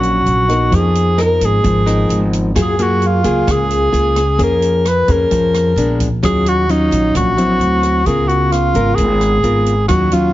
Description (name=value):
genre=bossa nova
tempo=131 BPM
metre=4/4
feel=straight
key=unclear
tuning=A4 = 440 Hz
part: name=breathy alto saxophone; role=melody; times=0.0-10.3 s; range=Eb4 to Cb5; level=-16 LUFS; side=equal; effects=none
part: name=nylon-string guitar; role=accompaniment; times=0.0-10.3 s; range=Ab2 to Bb4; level=-17 LUFS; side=left 2 dB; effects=none
part: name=upright bass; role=bass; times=0.0-10.3 s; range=Ab1 to Gb2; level=-17 LUFS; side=equal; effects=none
part: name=open jazz drum kit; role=drums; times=0.0-10.2 s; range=hi-hat, kick drum, rim click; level=-24 LUFS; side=right 1 dB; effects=none
room=light reverb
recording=heavily compressed radio sound, multiband compression, nothing above 7.5 kHz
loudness=-12 LUFS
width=side -15 dB against mid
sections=0.0-10.3 A section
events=none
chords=0.0 Ebm7; 0.7 Abm69; 2.6 Gbmaj9; 4.4 Bbm7/F; 5.8 Bb7b9; 6.2 Ebm9; 7.6 D9; 8.1 Db6